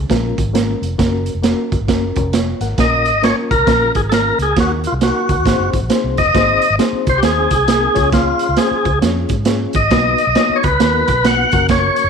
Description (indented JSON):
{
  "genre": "uptempo 1960s-style soul",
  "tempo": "134 BPM",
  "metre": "4/4",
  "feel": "swing 62% on 8ths",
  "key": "Db major",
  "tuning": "A4 = 439 Hz",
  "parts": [
    { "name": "vintage muted fingered electric bass", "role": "bass", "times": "0.0-12.1 s", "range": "F1 to Ab2", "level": "-20 LUFS", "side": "equal", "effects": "none" },
    { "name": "reed electric piano", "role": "accompaniment", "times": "0.1-12.0 s", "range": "Ab3 to Gb5", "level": "-22 LUFS", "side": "left 10 dB", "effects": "tremolo" },
    { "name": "crunchy breakbeat drum kit", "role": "drums", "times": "0.1-12.0 s", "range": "hi-hat, kick drum, snare drum", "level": "-17 LUFS", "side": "right 4 dB", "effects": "none" },
    { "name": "tonewheel organ", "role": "melody", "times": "2.8-12.1 s", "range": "F4 to Gb5", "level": "-15 LUFS", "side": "left 1 dB", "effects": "overdrive, fast rotary speaker" }
  ],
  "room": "moderate echo chamber reverb, RT60 1.4 s, studio reverb",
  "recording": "1960s-style stereo",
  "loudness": "-13 LUFS",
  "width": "side -6 dB against mid",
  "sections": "0.0-6.3 A section; 6.3-12.1 B section",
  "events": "none",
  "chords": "0.0 Db; 1.0 Gb; 2.8 Bbm; 4.6 Ebm; 5.5 Ab; 7.9 Db; 9.9 Cb; 11.5 Gb",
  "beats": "0.10 0.55 | 0.99 1.44 1.88 2.33 | 2.78 3.22 3.67 4.12 | 4.56 5.01 5.46 5.90 | 6.35 6.80 7.24 7.69 | 8.13 8.58 9.02 9.47 | 9.91 10.36 10.80 11.25 | 11.69"
}